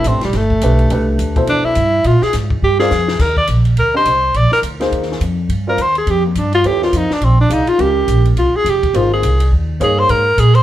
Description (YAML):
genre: modal jazz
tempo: 209 BPM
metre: 4/4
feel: swing 60% on 8ths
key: C major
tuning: A4 = 441 Hz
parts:
  - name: mellow tenor saxophone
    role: melody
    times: 0.0-10.6 s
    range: G3 to D5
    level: -15 LUFS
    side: equal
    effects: none
  - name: dark baby grand piano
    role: accompaniment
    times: 0.0-10.2 s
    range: B2 to F5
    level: -20 LUFS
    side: left 1 dB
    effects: none
  - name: upright bass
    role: bass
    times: 0.0-10.6 s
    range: E1 to Bb2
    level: -15 LUFS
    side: equal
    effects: none
  - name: compact cocktail drum kit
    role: drums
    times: 0.0-10.6 s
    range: crash cymbal, hi-hat, kick drum, ride cymbal, snare drum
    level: -25 LUFS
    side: left 1 dB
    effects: none
room: moderate small room reverb, RT60 0.6 s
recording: heard from further back in the room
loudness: -12 LUFS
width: side -13 dB against mid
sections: 0.0-3.2 A section; 3.2-10.6 A section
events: tenor saxophone solo 0.0-10.6; drum fill 2.6-3.2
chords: 0.0 Cmaj9; 2.0 Bb7(no3); 3.2 Ebmaj9; 7.8 Dbmaj7sus2